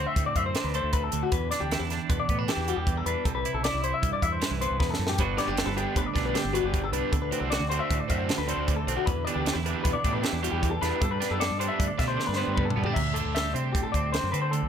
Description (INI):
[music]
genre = math rock and midwest emo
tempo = 155 BPM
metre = 5/4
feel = straight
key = unclear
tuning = A4 = 440 Hz
[part]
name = twelve-string electric guitar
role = accompaniment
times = 0.0-14.7 s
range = D2 to A4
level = -32 LUFS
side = right 11 dB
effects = none
[part]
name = electric guitar through a small old amp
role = arpeggios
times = 0.0-14.7 s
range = F#4 to E5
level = -30 LUFS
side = left 8 dB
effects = vibrato effect
[part]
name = growling fingered electric bass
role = bass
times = 0.0-14.7 s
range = F#1 to D3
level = -32 LUFS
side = equal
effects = overdrive
[part]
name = crisp fusion drum kit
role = drums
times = 0.2-14.6 s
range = crash cymbal, hi-hat, kick drum, snare drum, toms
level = -30 LUFS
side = right 1 dB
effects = none
[part]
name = raw garage guitar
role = riff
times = 5.4-13.0 s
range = A3 to C5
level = -33 LUFS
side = right 3 dB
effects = overdrive
[sound]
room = little or no reverb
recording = none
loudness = -24 LUFS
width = side -8 dB against mid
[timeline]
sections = 0.0-13.0 A section; 13.0-14.7 B section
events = drum fill 4.8-5.2, 12.2-13.0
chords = 0.0 D7; 1.3 Em7; 3.3 Cmaj7; 5.2 Gmaj7; 7.1 D7; 9.1 Em7; 11.0 G; 13.0 D9sus4